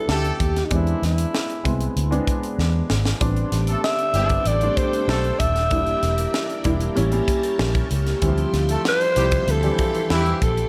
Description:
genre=polished 1980s jazz-funk pop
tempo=96 BPM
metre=4/4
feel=straight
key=A minor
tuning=A4 = 440 Hz
part: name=breathy alto saxophone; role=melody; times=0.0-10.7 s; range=D#4 to E5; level=-25 LUFS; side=equal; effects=none
part: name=warm grand piano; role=accompaniment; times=0.0-10.7 s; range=B2 to E4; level=-28 LUFS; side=equal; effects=analog chorus
part: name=clear horn section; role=second line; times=0.1-10.4 s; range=E3 to A4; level=-31 LUFS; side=equal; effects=digital delay
part: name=vintage muted fingered electric bass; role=bass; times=0.1-10.6 s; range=D#1 to E2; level=-25 LUFS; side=equal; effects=none
part: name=tight funk drum kit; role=drums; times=0.1-10.7 s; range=hi-hat, kick drum, snare drum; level=-28 LUFS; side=equal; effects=none
part: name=string machine, full ensemble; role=sustained chords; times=3.2-10.7 s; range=D4 to C6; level=-35 LUFS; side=equal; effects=ensemble chorus
room=light reverb, studio reverb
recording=none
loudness=-21 LUFS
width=mono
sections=0.0-10.7 A section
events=drum fill 2.6-3.2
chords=0.0 Cmaj9 (rootless); 0.7 E7b13; 3.2 Am11; 5.7 Em7b5; 7.0 A7b9; 8.2 Dm11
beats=0.09 | 0.71 1.34 1.97 2.59 | 3.22 3.84 4.47 5.09 | 5.72 6.35 6.97 7.60 | 8.22 8.85 9.48 10.11

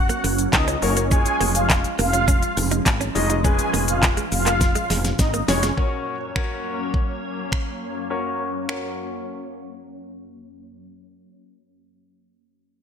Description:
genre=dance-pop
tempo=103 BPM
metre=4/4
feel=straight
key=F# major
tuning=A4 = 440 Hz
part: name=filtered supersaw swell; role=melody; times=0.0-5.6 s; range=C#4 to G#5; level=-24 LUFS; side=equal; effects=wide subtle chorus, sidechain pumping, ping-pong delay
part: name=glassy FM pad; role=sustained chords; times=0.0-10.4 s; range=F#2 to C#5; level=-30 LUFS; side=right 2 dB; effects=ensemble chorus, built-in reverb, sidechain pumping, low-pass filter
part: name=woody fretless electric bass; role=bass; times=0.0-5.7 s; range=E#1 to C#2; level=-24 LUFS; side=equal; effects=ensemble chorus, sidechain pumping
part: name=direct-recorded clean electric guitar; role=riff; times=0.1-5.7 s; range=G#3 to D#4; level=-30 LUFS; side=right 6 dB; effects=wide subtle chorus
part: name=pop drum kit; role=drums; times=0.1-8.8 s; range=finger snaps, handclaps, hi-hat, kick drum, shaker, snare drum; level=-21 LUFS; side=equal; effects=none
part: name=warm concert grand piano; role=accompaniment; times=0.8-9.4 s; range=G#3 to D#5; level=-28 LUFS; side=left 4 dB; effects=low-pass filter
room=light reverb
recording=bright 1980s-style digital production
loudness=-19 LUFS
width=side -7 dB against mid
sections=0.0-5.8 A section; 5.8-10.4 B section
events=drop 0.0-5.8; drum fill 4.6-5.8; filter sweep 5.8-10.4; break 9.9-10.4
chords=0.0 C#/E#; 5.8 F#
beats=0.53 | 1.11 1.70 2.28 2.86 | 3.44 4.03 4.61 5.19 | 5.78 6.36 6.94 7.52 | 8.11 8.69 9.27 9.85

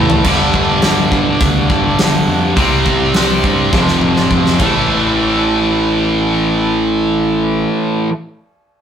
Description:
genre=hard rock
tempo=103 BPM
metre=4/4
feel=straight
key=A minor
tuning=A4 = 439 Hz
part: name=distorted electric guitar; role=riff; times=0.0-8.1 s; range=F2 to C4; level=-13 LUFS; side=equal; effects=overdrive
part: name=fuzz picked electric bass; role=bass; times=0.0-7.6 s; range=F1 to G2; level=-20 LUFS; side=equal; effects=overdrive
part: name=huge arena drum kit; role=drums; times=0.1-4.7 s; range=crash cymbal, hi-hat, kick drum, snare drum, toms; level=-16 LUFS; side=equal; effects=none
room=light reverb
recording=rough rehearsal-room recording, warm saturation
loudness=-11 LUFS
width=side -8 dB against mid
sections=0.2-4.9 A section; 4.9-7.2 B section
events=drum fill 0.0, 3.7-4.9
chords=0.2 G5; 2.6 C5; 3.7 F5; 4.6 A5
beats=| 0.25 0.83 1.41 1.99 | 2.57 3.15 3.73 4.31 | 4.89 5.47 6.05 6.63

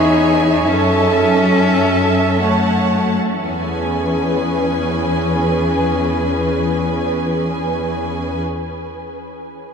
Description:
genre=cinematic, emotional film score for orchestra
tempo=57-77 BPM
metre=3/4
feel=rubato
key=E major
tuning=A4 = 440 Hz
part: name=warm cello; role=melody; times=0.0-8.4 s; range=E3 to D#4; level=-19 LUFS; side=left 2 dB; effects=none
part: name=rich studio violin section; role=second line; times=0.0-8.4 s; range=B4 to A5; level=-21 LUFS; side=equal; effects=none
part: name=warm studio viola section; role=accompaniment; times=0.0-8.4 s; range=C#4 to E5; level=-21 LUFS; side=right 1 dB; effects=none
part: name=warm studio cello section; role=bass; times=0.0-8.4 s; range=E2 to F#2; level=-21 LUFS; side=equal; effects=none
room=wet huge ambient reverb, RT60 9.2 s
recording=in a vast, echoing space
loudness=-14 LUFS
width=side -6 dB against mid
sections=0.0-3.5 A section; 3.5-9.6 B section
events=slowing down 0.0-3.5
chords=0.0 E6; 0.7 F#m7; 3.5 E6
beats=| 0.69 1.52 2.43 | 3.45 4.49 5.53 | 6.56 7.58

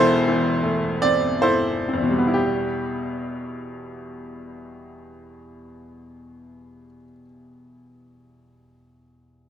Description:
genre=classical, romantic character piece for solo piano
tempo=66 BPM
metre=3/4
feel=rubato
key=E minor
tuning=A4 = 441 Hz
part: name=bright baby grand piano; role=solo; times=0.0-9.5 s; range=E1 to D5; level=-20 LUFS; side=equal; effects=none
room=light reverb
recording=close, detailed microphones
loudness=-19 LUFS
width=side -9 dB against mid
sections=0.0-2.4 A section; 2.4-7.9 B section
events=slowing down 0.0-2.4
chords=0.0 Am/E; 2.4 Em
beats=0.64 1.44 | 2.36 3.28 4.18 | 5.09 6.01 6.93

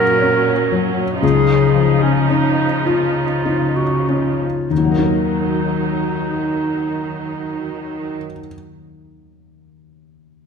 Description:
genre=cinematic, emotional film score for orchestra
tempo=31-41 BPM (dotted quarters)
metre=6/8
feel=rubato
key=Eb minor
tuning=A4 = 440 Hz
part: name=clear clarinet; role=second line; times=0.0-8.2 s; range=Db4 to Bb4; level=-20 LUFS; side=right 1 dB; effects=none
part: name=felt-muted upright piano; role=accompaniment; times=0.0-10.5 s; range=Db2 to Bb4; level=-21 LUFS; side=left 4 dB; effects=none
part: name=rich studio viola section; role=accompaniment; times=0.0-8.2 s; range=F3 to Eb4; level=-24 LUFS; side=right 5 dB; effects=none
part: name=concert harp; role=arpeggios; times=0.0-8.6 s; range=Bb2 to Bb4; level=-21 LUFS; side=left 9 dB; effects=none
part: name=rich studio cello section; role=bass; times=0.0-8.2 s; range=Bb2 to Eb3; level=-26 LUFS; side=right 5 dB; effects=none
room=wet concert hall reverb, RT60 1.7 s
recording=none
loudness=-15 LUFS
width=side -6 dB against mid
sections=0.0-4.7 A section; 4.7-8.4 B section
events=slowing down 0.0-4.7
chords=0.0 Gb/Bb; 1.2 Dbadd9; 4.7 Ebm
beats=| 1.22 2.86 | 4.71 6.55

